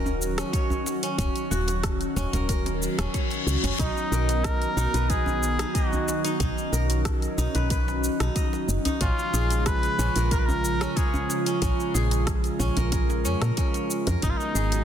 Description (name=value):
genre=organic downtempo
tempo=92 BPM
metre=4/4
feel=straight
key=Eb minor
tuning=A4 = 440 Hz
part: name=airy breathy pad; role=sustained chords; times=0.0-14.8 s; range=Db3 to Gb4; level=-30 LUFS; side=right 1 dB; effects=chorus, sidechain pumping
part: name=steel-string zither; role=arpeggios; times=0.0-14.8 s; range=Db4 to D#5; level=-32 LUFS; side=left 2 dB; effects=tape echo
part: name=woody FM bass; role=bass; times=0.0-14.8 s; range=Eb1 to Bb2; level=-26 LUFS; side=equal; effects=sidechain pumping
part: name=bronze singing bowl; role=texture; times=0.0-14.8 s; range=D#5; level=-40 LUFS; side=right 11 dB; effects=none
part: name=deep house drum kit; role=drums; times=0.1-14.8 s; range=hi-hat, rim click, shaker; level=-33 LUFS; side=equal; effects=soft clipping on snare
part: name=djembe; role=percussion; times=0.1-14.8 s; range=none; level=-32 LUFS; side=right 1 dB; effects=none
part: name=electronic kick drum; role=drums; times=0.5-14.4 s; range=none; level=-27 LUFS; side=equal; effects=none
part: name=reverse cymbal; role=sound effects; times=2.8-3.8 s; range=none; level=-32 LUFS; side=left 6 dB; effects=none
part: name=trumpet with cup mute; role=melody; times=3.8-14.8 s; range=D#4 to Cb5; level=-31 LUFS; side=left 1 dB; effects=ping-pong delay
room=light reverb, studio ambience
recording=dense, heavily limited modern master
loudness=-22 LUFS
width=side -9 dB against mid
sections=0.0-14.8 A section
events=reverse cymbal 2.8-3.8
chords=0.0 Ebm7; 3.8 Bmaj7; 9.0 Bbm7; 14.2 Abm7